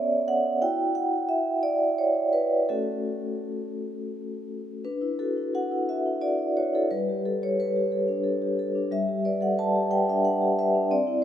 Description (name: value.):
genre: classical, contemporary piece for solo vibraphone.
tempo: 88 BPM.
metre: 3/4.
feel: rubato.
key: unclear.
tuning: A4 = 440 Hz.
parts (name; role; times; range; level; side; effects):
vibraphone with soft mallets; solo; 0.0-11.2 s; G3 to A5; -24 LUFS; equal; none.
room: moderate concert hall reverb, RT60 2.3 s.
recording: none.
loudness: -23 LUFS.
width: side -10 dB against mid.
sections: 0.0-4.8 A section; 4.8-11.2 B section.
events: none.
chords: 0.0 Bm9; 0.6 Esus2; 2.7 A6; 4.8 Dadd9; 6.9 Gadd9.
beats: | 0.62 1.29 1.97 | 2.69 3.42 4.13 | 4.84 5.53 6.21 | 6.89 7.57 8.24 | 8.91 9.58 10.25 | 10.91.